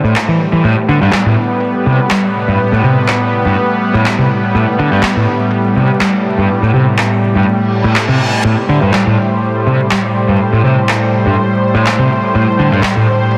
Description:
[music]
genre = breakbeat, breaks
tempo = 123 BPM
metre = 4/4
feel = straight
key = unclear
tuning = A4 = 440 Hz
[part]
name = lush unison pad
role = sustained chords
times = 0.0-13.4 s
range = A2 to C5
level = -16 LUFS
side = equal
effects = chorus, vintage 12-bit sampler grit
[part]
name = fuzz picked electric bass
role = riff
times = 0.0-13.1 s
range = G2 to G3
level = -16 LUFS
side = equal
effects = overdrive, vintage 12-bit sampler grit, low-pass filter, digital delay
[part]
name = electronic handclaps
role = drums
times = 0.2-12.9 s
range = none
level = -21 LUFS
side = equal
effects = none
[part]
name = reverse cymbal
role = sound effects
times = 7.7-8.4 s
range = none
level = -22 LUFS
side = equal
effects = none
[sound]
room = light reverb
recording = dense, heavily limited modern master, vinyl crackle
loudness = -12 LUFS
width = mono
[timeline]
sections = 0.0-13.4 A section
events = reverse cymbal 7.7-8.4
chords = 0.0 Am7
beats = 0.15 | 0.64 1.13 1.62 2.10 | 2.59 3.08 3.57 4.06 | 4.54 5.03 5.52 6.01 | 6.50 6.98 7.47 7.96 | 8.45 8.93 9.42 9.91 | 10.40 10.88 11.37 11.86 | 12.35 12.84 13.32

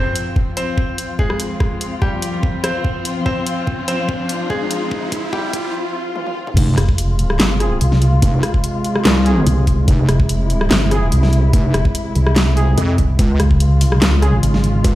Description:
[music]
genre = heavy wobble dubstep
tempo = 145 BPM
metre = 4/4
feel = swing 53% on 16ths, half-time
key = F harmonic minor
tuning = A4 = 440 Hz
[part]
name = bright grand piano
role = melody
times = 0.0-5.7 s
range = G3 to C5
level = -24 LUFS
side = left 1 dB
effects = digital delay
[part]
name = dark chamber string section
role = sustained chords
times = 0.0-14.9 s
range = C3 to F4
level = -23 LUFS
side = left 1 dB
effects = sidechain pumping, low-pass filter
[part]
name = riser and swell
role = sound effects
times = 0.0-6.6 s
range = none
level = -28 LUFS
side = equal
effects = none
[part]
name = dubstep drum kit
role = drums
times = 0.2-14.9 s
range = crash cymbal, handclaps, hi-hat, rim click, snare drum, toms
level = -20 LUFS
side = equal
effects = none
[part]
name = electronic kick drum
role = drums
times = 0.4-14.9 s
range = none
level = -17 LUFS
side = equal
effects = none
[part]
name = wobble bass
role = bass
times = 6.6-14.9 s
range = F1 to F2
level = -15 LUFS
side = equal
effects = chorus, overdrive
[part]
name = pulsing pluck wobble bass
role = bass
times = 6.8-14.8 s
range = F1 to Db2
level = -14 LUFS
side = equal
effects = chorus, overdrive
[part]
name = dark brass ensemble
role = stabs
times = 7.6-14.4 s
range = C4 to Ab4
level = -26 LUFS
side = right 2 dB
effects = digital delay
[sound]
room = little or no reverb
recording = played on a big sound system in a bare room, large studio reverb, high-pass filter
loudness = -14 LUFS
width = side -15 dB against mid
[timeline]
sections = 0.0-6.6 A section; 6.6-14.9 B section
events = build-up 0.0-6.6; riser 0.0-5.7; filter sweep on string section 0.0-6.6; drum fill 3.3-5.7, 6.2-6.6; swell 5.7-6.6; drop 6.6-14.9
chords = 0.0 Fm; 13.2 Db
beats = 0.36 0.78 1.19 | 1.60 2.02 2.43 2.85 | 3.26 3.67 4.09 4.50 | 4.91 5.33 5.74 6.16 | 6.57 6.98 7.40 7.81 | 8.22 8.64 9.05 9.47 | 9.88 10.29 10.71 11.12 | 11.54 11.95 12.36 12.78 | 13.19 13.60 14.02 14.43 | 14.85

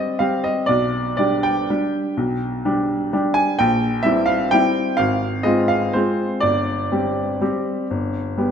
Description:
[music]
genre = classical, piano waltz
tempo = 125 BPM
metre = 3/4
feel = uneven beats, rubato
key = unclear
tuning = A4 = 440 Hz
[part]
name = clear upright piano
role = solo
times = 0.0-8.5 s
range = G1 to Ab5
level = -18 LUFS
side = equal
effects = none
[sound]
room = wet recital hall reverb, RT60 1.7 s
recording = none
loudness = -18 LUFS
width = side -7 dB against mid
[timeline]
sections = 0.0-8.5 A section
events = none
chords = 0.0 Cm; 0.7 G/B; 3.6 C7/Bb; 5.0 Fm/Ab; 6.4 Gsus4; 7.9 G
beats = 0.20 | 0.69 1.18 1.70 | 2.17 2.64 3.12 | 3.59 4.04 4.53 | 4.99 5.46 5.94 | 6.43 6.91 7.41 | 7.90 8.38

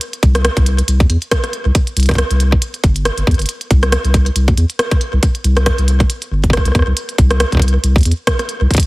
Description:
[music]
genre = IDM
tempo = 138 BPM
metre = 4/4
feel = swing 56% on 16ths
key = unclear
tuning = A4 = 440 Hz
[part]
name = glitchy drum kit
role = drums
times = 0.0-8.9 s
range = hi-hat, rim click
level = -19 LUFS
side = right 1 dB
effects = small room ambience, digital delay
[part]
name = warm sub bass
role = bass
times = 0.2-8.7 s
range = G1 to E2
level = -13 LUFS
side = equal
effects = none
[part]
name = electronic kick drum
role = drums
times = 0.2-8.8 s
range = none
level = -13 LUFS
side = equal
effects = small room ambience
[sound]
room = light reverb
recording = heavily compressed radio sound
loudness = -12 LUFS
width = side -21 dB against mid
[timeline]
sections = 0.0-8.9 A section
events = none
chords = none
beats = | 0.01 0.45 0.88 1.31 | 1.75 2.19 2.62 3.05 | 3.49 3.92 4.36 4.79 | 5.23 5.66 6.10 6.53 | 6.97 7.40 7.84 8.27 | 8.71

